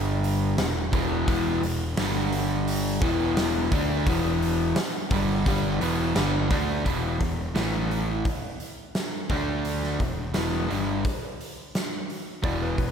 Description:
classic rock; 86 BPM; 4/4; straight; E minor; A4 = 440 Hz
overdriven semi-hollow guitar; riff; 0.0-12.9 s; E2 to D4; -29 LUFS; left 9 dB
overdriven semi-hollow guitar; riff; 0.0-12.9 s; E2 to D4; -29 LUFS; right 9 dB
fuzz picked electric bass; bass; 0.0-12.9 s; E1 to D2; -29 LUFS; equal; overdrive
big rock drum kit; drums; 0.2-12.9 s; hi-hat, kick drum, snare drum; -29 LUFS; equal
clean lap steel guitar; second line; 12.4-12.9 s; B4 to D5; -34 LUFS; left 2 dB; slapback echo
light reverb, small room reverb; -23 LUFS; side -7 dB against mid
0.0-6.9 A section; 6.9-12.9 B section
0.0 G5; 0.6 E5; 2.0 G5; 3.0 Em; 6.9 E5; 7.5 A5; 8.2 N.C.; 9.3 D5; 10.0 Em

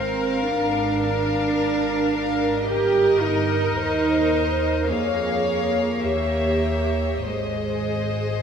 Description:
classical, slow romantic movement for string orchestra; 46-56 BPM; 4/4; rubato; A4 = 443 Hz
warm symphonic violin section; melody; 0.0-8.4 s; Eb5 to F5; -30 LUFS; left 7 dB
dark studio violin section; second line; 0.0-8.4 s; Bb4 to Db5; -28 LUFS; left 2 dB
dark symphonic viola section; accompaniment; 0.0-8.4 s; G4 to Bb4; -27 LUFS; right 2 dB
warm symphonic cello section; bass; 0.0-8.4 s; Ab3 to G4; -23 LUFS; right 2 dB
warm symphonic double bass section; bass; 0.0-8.4 s; G1 to F2; -28 LUFS; right 1 dB
wet concert hall reverb, RT60 2.6 s; minimal, uncompressed stereo recording; -20 LUFS; side -7 dB against mid
0.0-8.4 A section
0.0 Bb7/Ab; 2.7 Eb/G; 4.9 Db/F; 6.0 Eb7b9; 7.3 Ab

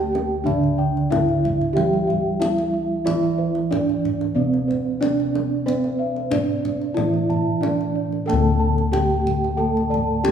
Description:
Javanese gamelan; 92 BPM; 4/4; straight; D slendro; A4 = 438 Hz
gamelan-type bronze metallophone; melody; 0.0-10.3 s; C4-40c to A4+20c; -23 LUFS; right 2 dB
gamelan-type bronze metallophone; accompaniment; 0.0-10.3 s; D3 to C4-40c; -25 LUFS; right 3 dB
gamelan-type bossed gongs; arpeggios; 0.0-10.3 s; C5-40c to A5+20c; -28 LUFS; left 6 dB
gamelan-type bronze metallophone; arpeggios; 0.0-10.3 s; C5-40c to A5+20c; -30 LUFS; right 5 dB
gamelan-type bossed gongs; bass; 0.0-10.3 s; D2 to C5-40c; -26 LUFS; left 4 dB
kendang; percussion; 0.0-10.3 s; -30 LUFS; left 3 dB
wet recital hall reverb, RT60 1.8 s; minimal, uncompressed stereo recording; -19 LUFS; side -8 dB against mid
0.0-10.3 A section

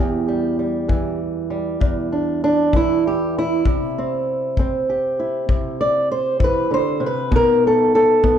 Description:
acoustic country blues, solo or duo; 65 BPM (dotted quarters); 12/8; straight; E minor; A4 = 441 Hz
fingerpicked old ladder-braced acoustic guitar; melody; 0.0-8.4 s; E2 to D5; -17 LUFS; right 1 dB
kick drum; drums; 0.9-8.4 s; -20 LUFS; left 2 dB
moderate recital hall reverb, RT60 1.3 s; recorded in a church or concert hall; -17 LUFS; side -9 dB against mid
0.0-8.4 A section
steel-string acoustic guitar solo 0.0-8.4
0.0 Em; 3.7 C; 7.3 B7

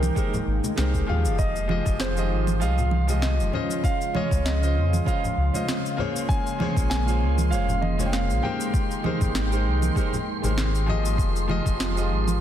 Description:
sunset chillout; 98 BPM; 4/4; swing 55% on 16ths; F minor; A4 = 442 Hz
warm concert grand piano; melody; 0.0-10.8 s; Bb4 to Ab5; -31 LUFS; right 1 dB; digital delay
clear concert grand piano; accompaniment; 0.0-12.4 s; Db3 to F5; -30 LUFS; moving between left 5 dB and right 6 dB; auto-pan, low-pass filter, digital delay
lush unison pad; sustained chords; 0.0-12.4 s; Db3 to G5; -31 LUFS; equal; chorus
warm sub bass; bass; 0.0-12.4 s; F1 to F2; -24 LUFS; equal
electronic congas, cabasa and snare drum; drums; 0.0-12.4 s; -31 LUFS; right 3 dB; overdrive
electronic kick drum; drums; 0.2-11.8 s; -25 LUFS; equal; overdrive
congas; percussion; 0.3-11.6 s; -34 LUFS; left 4 dB
wind-like tuned noise texture; texture; 1.8-12.4 s; C6; -38 LUFS; right 2 dB; built-in reverb
light reverb, digital ambience; dense, heavily limited modern master; -21 LUFS; side -10 dB against mid
0.0-12.4 A section
0.0 Abmaj9; 1.4 Fm7; 3.8 Dbmaj7; 6.3 Bbm9; 8.7 Abmaj9; 11.2 Fm7

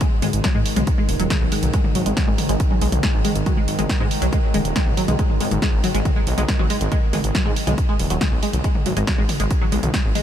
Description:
driving peak-time techno; 139 BPM; 4/4; straight; G# minor; A4 = 440 Hz
wide unison pluck; riff; 0.0-10.2 s; F#3 to G#3; -24 LUFS; equal; overdrive, ensemble chorus, sidechain pumping, tape echo
deep dark ambient pad; drone; 0.0-10.2 s; G#2 to D#3; -28 LUFS; right 1 dB; chorus, built-in reverb, sidechain pumping
electronic kick drum; drums; 0.0-10.0 s; -20 LUFS; equal
techno drum kit; drums; 0.0-10.2 s; hi-hat, snare drum, toms; -25 LUFS; equal
detuned saw bass; bass; 0.2-10.1 s; D#1 to G#2; -23 LUFS; equal; sidechain pumping
light reverb; -17 LUFS; side -10 dB against mid
0.0-10.2 A section
0.0 G#5

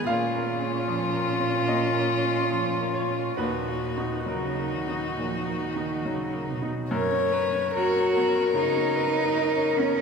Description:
neoclassical piano and strings; 67-76 BPM; 4/4; rubato; F# major; A4 = 440 Hz
rich violin; melody; 0.0-10.0 s; E#4 to C#5; -27 LUFS; left 3 dB
dark cello; second line; 0.0-10.0 s; A#2 to F#4; -29 LUFS; right 2 dB
bright upright piano; accompaniment; 0.0-10.0 s; D#2 to E#5; -30 LUFS; right 1 dB
dark viola; accompaniment; 0.0-10.0 s; C#4 to C#5; -32 LUFS; right 2 dB
wet cathedral reverb, RT60 4.6 s; recorded in a church or concert hall; -23 LUFS; side -5 dB against mid
0.0-6.9 A section; 6.9-10.0 B section
0.1 A#m; 3.4 D#m; 6.9 F#

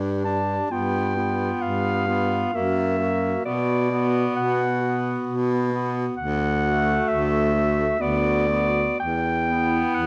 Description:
classical, lyrical piece for single-reed quartet; 66 BPM; 3/4; rubato; B minor; A4 = 440 Hz
mellow clarinet; second line; 0.0-10.1 s; E4 to G4; -33 LUFS; equal
clear tenor saxophone; accompaniment; 0.0-10.1 s; A3 to D4; -30 LUFS; equal
clear baritone saxophone; bass; 0.0-10.1 s; D2 to B2; -27 LUFS; equal
warm clarinet; melody; 0.2-10.1 s; D5 to A5; -27 LUFS; equal
moderate recital hall reverb, RT60 1.5 s; -23 LUFS; mono
0.0-10.1 A section
0.0 G5; 0.7 G7; 2.5 F#; 3.5 Bm; 6.2 D; 8.0 Bm/D; 9.0 Em

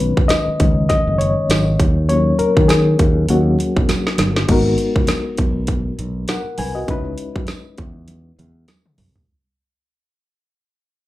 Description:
lush 1970s-style soul; 100 BPM; 4/4; swing 58% on 16ths; G# minor; A4 = 440 Hz
reed electric piano; accompaniment; 0.0-9.3 s; D#3 to G#5; -19 LUFS; left 2 dB; fast tremolo, slapback echo
fingered electric bass; bass; 0.0-9.2 s; F#1 to D#3; -19 LUFS; equal
congas; percussion; 0.0-9.1 s; -26 LUFS; right 3 dB
garage drum kit; drums; 0.2-9.3 s; crash cymbal, hi-hat, kick drum, snare drum, toms; -19 LUFS; equal; overdrive
tambourine; percussion; 0.3-8.8 s; -35 LUFS; right 2 dB
light reverb; live gig heard through the venue's PA, club reverb; -14 LUFS; side -16 dB against mid
0.0-4.5 A section; 4.5-9.3 B section
reed electric piano solo 0.0-4.5; drum fill 3.9-4.5, 8.7-9.3; fade-out 4.5-9.3
0.0 B69; 1.8 D#m7; 4.5 G#m7; 6.9 C#m7

